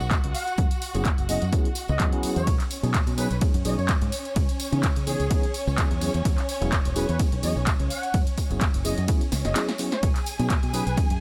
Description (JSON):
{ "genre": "filtered disco house", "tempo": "127 BPM", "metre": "4/4", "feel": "swing 54% on 16ths", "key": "B major", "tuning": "A4 = 439 Hz", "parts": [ { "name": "warm symphonic violin section", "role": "sustained chords", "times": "0.0-11.2 s", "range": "C#4 to G#5", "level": "-37 LUFS", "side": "equal", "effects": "sidechain pumping" }, { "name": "fingered electric bass", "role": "bass", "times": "0.0-11.2 s", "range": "E1 to C#3", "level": "-30 LUFS", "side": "equal", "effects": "tube saturation, sidechain pumping" }, { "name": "tambourine", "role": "percussion", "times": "0.0-11.1 s", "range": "none", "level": "-42 LUFS", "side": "equal", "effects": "sidechain pumping on perc" }, { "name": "electronic kick drum", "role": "drums", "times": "0.1-11.1 s", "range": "none", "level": "-26 LUFS", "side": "equal", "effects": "overdrive" }, { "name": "punchy analog drum machine", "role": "drums", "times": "0.1-11.2 s", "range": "handclaps, hi-hat, ride cymbal, snare drum", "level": "-34 LUFS", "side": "equal", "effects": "overdrive, sidechain pumping on hats, sidechain pumping on cymbals" }, { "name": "mellow horn section", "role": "melody", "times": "0.3-10.9 s", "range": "G#4 to F#5", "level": "-36 LUFS", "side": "equal", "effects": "sidechain pumping, dub echo" }, { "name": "tine electric piano", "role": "accompaniment", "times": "0.9-11.1 s", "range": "E3 to G#4", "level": "-32 LUFS", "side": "equal", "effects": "phaser, sidechain pumping" } ], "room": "little or no reverb", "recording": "none", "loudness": "-24 LUFS", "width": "mono", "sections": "0.0-11.2 A section", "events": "drum fill 9.3-10.0", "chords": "0.0 Esus2 (rootless); 0.6 F#9sus4; 2.5 B69; 4.1 C#m9; 6.0 E69; 8.1 F#9sus4; 10.0 B69" }